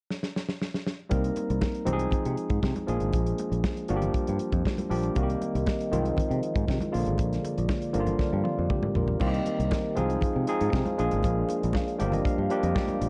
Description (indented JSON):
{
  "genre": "disco",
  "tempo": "119 BPM",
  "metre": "4/4",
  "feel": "straight",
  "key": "C minor",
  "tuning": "A4 = 438 Hz",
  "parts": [
    { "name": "warm soul drum kit", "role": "drums", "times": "0.1-13.1 s", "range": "crash cymbal, hi-hat, kick drum, snare drum, toms", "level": "-32 LUFS", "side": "equal", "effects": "none" },
    { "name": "barky tine electric piano", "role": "accompaniment", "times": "1.1-13.1 s", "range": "Db3 to G5", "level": "-31 LUFS", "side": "equal", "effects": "overdrive" },
    { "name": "fingered electric bass", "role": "bass", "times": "1.1-13.1 s", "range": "G1 to C3", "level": "-31 LUFS", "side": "equal", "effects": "none" },
    { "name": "congas", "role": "percussion", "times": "1.1-13.0 s", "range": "none", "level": "-39 LUFS", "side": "equal", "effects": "none" },
    { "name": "dark French horn section", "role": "sustained chords", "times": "5.2-13.1 s", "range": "Bb3 to F5", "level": "-37 LUFS", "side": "equal", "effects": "none" }
  ],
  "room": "light reverb",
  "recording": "dark, warm production, nothing above 10.6 kHz",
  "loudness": "-27 LUFS",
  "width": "mono",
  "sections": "0.0-1.1 A section; 1.1-9.2 B section; 9.2-13.1 C section",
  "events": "drum fill 0.1-1.1, 8.2-9.2; tine electric piano fill 11.7-13.1",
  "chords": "0.0 N.C.; 1.1 Cm7; 1.9 Ab6/C; 2.9 Bb7; 3.9 Gm7; 5.2 Cm7; 5.9 Ab6/C; 6.9 Bb7; 7.9 Gm7; 9.2 Cm7; 10.0 Ab6/C; 11.0 Bb7; 12.0 Gm7"
}